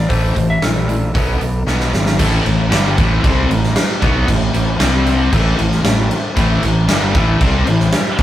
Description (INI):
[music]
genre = hard rock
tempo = 115 BPM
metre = 4/4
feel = straight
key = A dorian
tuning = A4 = 440 Hz
[part]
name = lightly driven lead guitar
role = melody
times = 0.0-1.9 s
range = A4 to E5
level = -24 LUFS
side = left 1 dB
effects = none
[part]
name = crunchy overdriven guitar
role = riff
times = 0.0-8.2 s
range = G2 to C4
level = -21 LUFS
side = left 5 dB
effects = none
[part]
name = tight distorted guitar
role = riff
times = 0.0-8.2 s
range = G2 to C4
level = -24 LUFS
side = right 4 dB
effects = distortion
[part]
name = fuzz fingered electric bass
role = bass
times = 0.0-8.2 s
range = G1 to C2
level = -17 LUFS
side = equal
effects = overdrive
[part]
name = huge arena drum kit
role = drums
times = 0.1-8.2 s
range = crash cymbal, hi-hat, kick drum, snare drum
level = -17 LUFS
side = equal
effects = none
[part]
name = scooped high-gain guitar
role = riff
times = 2.2-8.2 s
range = G2 to C4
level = -22 LUFS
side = equal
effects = distortion
[sound]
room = light reverb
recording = rough rehearsal-room recording, tube saturation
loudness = -13 LUFS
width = side -12 dB against mid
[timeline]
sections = 0.0-2.2 A section; 2.2-8.2 B section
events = drum fill 1.7-2.2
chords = 0.0 Am; 1.2 B5; 2.2 Am; 4.8 C5; 5.3 Am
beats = | 0.11 0.63 1.15 1.68 | 2.20 2.72 3.25 3.77 | 4.29 4.81 5.33 5.85 | 6.37 6.89 7.41 7.93